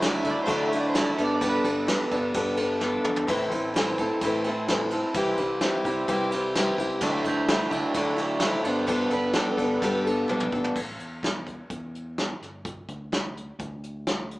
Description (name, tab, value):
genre	folk rock and heartland rock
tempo	128 BPM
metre	4/4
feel	straight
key	unclear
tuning	A4 = 437 Hz
part	overdriven slide guitar	second line	0.0-2.8, 7.0-10.0 s	F#4 to E5	-31 LUFS	right 2 dB	none
part	picked steel-string acoustic guitar	accompaniment	0.0-10.8 s	A2 to A4	-27 LUFS	left 2 dB	none
part	mellow accordion	sustained chords	0.0-10.8 s	B3 to C5	-35 LUFS	right 1 dB	none
part	electric guitar through a small old amp	riff	0.0-10.8 s	A2 to A4	-29 LUFS	right 1 dB	none
part	fingered electric bass	bass	0.0-14.4 s	G1 to D3	-39 LUFS	equal	none
part	soft brush drum kit	drums	0.0-14.4 s	crash cymbal, hi-hat, kick drum, ride cymbal, snare drum, toms	-29 LUFS	equal	none
room	light reverb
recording	band playing live in one room, small speaker sound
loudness	-23 LUFS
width	side -19 dB against mid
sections	0.0-10.8 A section; 10.8-14.4 B section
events	drum fill 2.8-3.3, 10.3-10.8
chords	0.0 Dadd9; 1.2 Gadd9; 3.3 Am; 5.2 C; 7.0 Dadd9; 8.7 Gadd9; 10.8 N.C.; 12.4 G5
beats	0.01 0.48 0.95 | 1.42 1.89 2.35 2.82 | 3.29 3.76 4.22 4.69 | 5.16 5.63 6.09 6.56 | 7.03 7.49 7.96 8.43 | 8.89 9.36 9.83 10.30 | 10.77 11.24 11.71 12.18 | 12.66 13.13 13.60 14.07